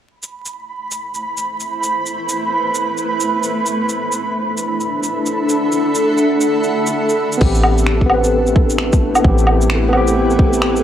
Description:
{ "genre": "future garage", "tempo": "131 BPM", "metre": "4/4", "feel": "swing 62% on 16ths", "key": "A dorian", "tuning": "A4 = 440 Hz", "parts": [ { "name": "granular cloud pad", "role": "sustained chords", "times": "1.7-10.8 s", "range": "A3 to F#5", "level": "-19 LUFS", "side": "equal", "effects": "built-in reverb, sidechain pumping" }, { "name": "flickering grainy texture", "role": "texture", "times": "0.3-10.8 s", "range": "A4 to B5", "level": "-23 LUFS", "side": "right 3 dB", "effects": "built-in reverb" }, { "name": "organic electronic drum kit", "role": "drums", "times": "0.2-10.8 s", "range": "crash cymbal, finger snaps, shaker, woodblock", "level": "-20 LUFS", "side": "equal", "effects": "none" }, { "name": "bright tine electric piano", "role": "accompaniment", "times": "7.4-10.8 s", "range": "B3 to B4", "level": "-17 LUFS", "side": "left 1 dB", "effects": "medium stereo tremolo, sidechain pumping, low-pass filter, tape echo" }, { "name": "soft 808-style bass", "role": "bass", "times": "7.4-10.8 s", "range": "A1", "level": "-18 LUFS", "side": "equal", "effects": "transformer saturation, sidechain pumping" }, { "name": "electronic kick drum", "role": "drums", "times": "7.4-10.5 s", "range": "none", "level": "-13 LUFS", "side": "equal", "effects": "none" } ], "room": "moderate lush hall reverb, RT60 1.7 s, digital ambience", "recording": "dry, gritty hardware recording, vinyl crackle", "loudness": "-14 LUFS", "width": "side -10 dB against mid", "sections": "0.1-7.4 A section; 7.4-10.8 B section", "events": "fade-in on ambient pad 0.1-7.4; filter sweep on tine electric piano 7.4-10.8", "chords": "0.1 Amadd9; 3.7 D7; 7.4 Am9", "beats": "| 0.08 0.54 1.00 1.46 | 1.92 2.37 2.83 3.29 | 3.75 4.21 4.67 5.12 | 5.58 6.04 6.50 6.96 | 7.41 7.87 8.33 8.79 | 9.24 9.70 10.16 10.62" }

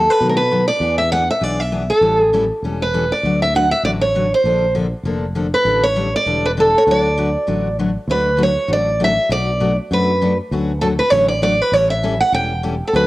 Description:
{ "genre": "acoustic string swing (jazz manouche)", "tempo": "198 BPM", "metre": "4/4", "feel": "swing 59% on 8ths", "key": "D major", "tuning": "A4 = 441 Hz", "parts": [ { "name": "picked steel-string acoustic guitar", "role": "melody", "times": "0.0-13.1 s", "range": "A4 to G5", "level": "-16 LUFS", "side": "right 1 dB", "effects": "none" }, { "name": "fretless electric bass", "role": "bass", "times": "0.0-13.1 s", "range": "E1 to B2", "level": "-22 LUFS", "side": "equal", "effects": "none" }, { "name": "picked steel-string acoustic guitar", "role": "accompaniment", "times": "0.2-13.1 s", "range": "B2 to B4", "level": "-22 LUFS", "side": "left 3 dB", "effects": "cassette tape" } ], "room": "moderate spring reverb, RT60 1.2 s, studio reverb", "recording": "home recording on cassette", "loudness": "-14 LUFS", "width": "side -17 dB against mid", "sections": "0.0-8.1 A section; 8.1-13.1 B section", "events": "none", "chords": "0.0 B7; 0.8 E7; 2.0 A7; 3.2 D6; 4.4 Bbmaj9; 5.7 A7sus4; 6.9 D6; 8.1 D; 9.3 Bm7; 10.5 Dmaj7; 11.7 A7", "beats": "0.19 0.50 | 0.80 1.10 1.41 1.71 | 2.02 2.32 2.62 2.93 | 3.23 3.53 3.84 4.14 | 4.44 4.75 5.05 5.35 | 5.66 5.96 6.26 6.57 | 6.87 7.17 7.48 7.78 | 8.08 8.39 8.69 8.99 | 9.29 9.60 9.90 10.21 | 10.51 10.81 11.11 11.42 | 11.72 12.02 12.33 12.63 | 12.93" }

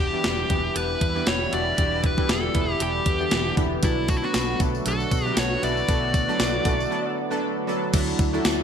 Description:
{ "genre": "1980s-style pop", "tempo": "117 BPM", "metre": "4/4", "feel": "swing 55% on 16ths", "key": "unclear", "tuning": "A4 = 440 Hz", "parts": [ { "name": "dark smooth lead guitar", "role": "melody", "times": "0.0-7.4 s", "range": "E4 to D5", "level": "-27 LUFS", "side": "left 1 dB", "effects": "overdrive, ping-pong delay" }, { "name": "chorused retro synth keys", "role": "accompaniment", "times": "0.0-8.6 s", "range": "E3 to B4", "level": "-27 LUFS", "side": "right 1 dB", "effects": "none" }, { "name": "sweeping resonant pad", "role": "sustained chords", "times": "0.0-8.6 s", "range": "D3 to F#4", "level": "-32 LUFS", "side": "equal", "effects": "chorus" }, { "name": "vintage muted fingered electric bass", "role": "bass", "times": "0.0-8.6 s", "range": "E1 to B2", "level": "-30 LUFS", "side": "equal", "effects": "none" }, { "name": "clean 12-bit digital drum machine", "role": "drums", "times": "0.2-8.6 s", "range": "crash cymbal, hi-hat, kick drum, snare drum", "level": "-24 LUFS", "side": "equal", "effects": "gated reverb" }, { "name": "tambourine", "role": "percussion", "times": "3.8-8.6 s", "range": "none", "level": "-40 LUFS", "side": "left 12 dB", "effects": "none" }, { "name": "mellow synth brass", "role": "stabs", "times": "8.3-8.4 s", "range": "E4 to A4", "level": "-29 LUFS", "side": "right 1 dB", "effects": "chorus" } ], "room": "moderate plate reverb, RT60 1.5 s", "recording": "bright 1980s-style digital production", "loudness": "-21 LUFS", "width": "side -7 dB against mid", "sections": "0.0-7.9 A section", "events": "break 6.9-7.9", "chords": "0.0 Em7; 3.8 Bm7", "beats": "0.24 0.76 1.27 | 1.78 2.29 2.81 3.32 | 3.83 4.35 4.86 5.37 | 5.88 6.40 6.91 7.42 | 7.94 8.45" }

